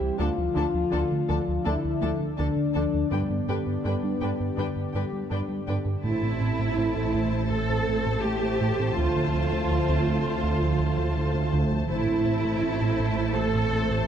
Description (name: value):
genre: cinematic, hybrid orchestral and electronic film score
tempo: 82 BPM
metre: 4/4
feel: straight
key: A minor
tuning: A4 = 441 Hz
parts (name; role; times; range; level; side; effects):
- dark analog pad; sustained chords; 0.0-14.1 s; D3 to D5; -35 LUFS; left 1 dB; chorus
- mellow French horn section; sustained chords; 0.0-14.1 s; B3 to A4; -32 LUFS; left 5 dB; none
- harp-like synth pluck; arpeggios; 0.0-14.0 s; D3 to A4; -34 LUFS; right 2 dB; chorus, digital delay
- round analog bass; riff; 0.0-14.0 s; C2 to A3; -30 LUFS; right 1 dB; none
- rich symphonic violin section; second line; 0.2-14.1 s; A4 to A5; -36 LUFS; left 6 dB; none
- warm symphonic viola section; accompaniment; 0.2-14.1 s; D3 to D4; -36 LUFS; equal; none
- dark symphonic cello section; bass; 0.2-14.1 s; D2 to A4; -30 LUFS; right 3 dB; none
- clear trombone section; sustained chords; 6.0-14.1 s; A2 to A3; -38 LUFS; right 5 dB; none
- rich symphonic double bass section; bass; 6.0-14.1 s; A1 to D2; -29 LUFS; right 3 dB; none
- rich symphonic violin section; melody; 6.1-14.1 s; A5; -37 LUFS; left 4 dB; none
room: moderate scoring stage reverb, RT60 1.5 s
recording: dark, warm production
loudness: -23 LUFS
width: side -8 dB against mid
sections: 0.0-6.0 A section; 6.0-14.1 B section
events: none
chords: 0.2 Dm; 3.1 G; 6.0 Am; 9.0 Dm7; 11.9 Am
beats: | 0.19 0.93 1.66 2.39 | 3.12 3.85 4.58 5.32 | 6.05 6.78 7.51 8.24 | 8.97 9.71 10.44 11.17 | 11.90 12.63 13.36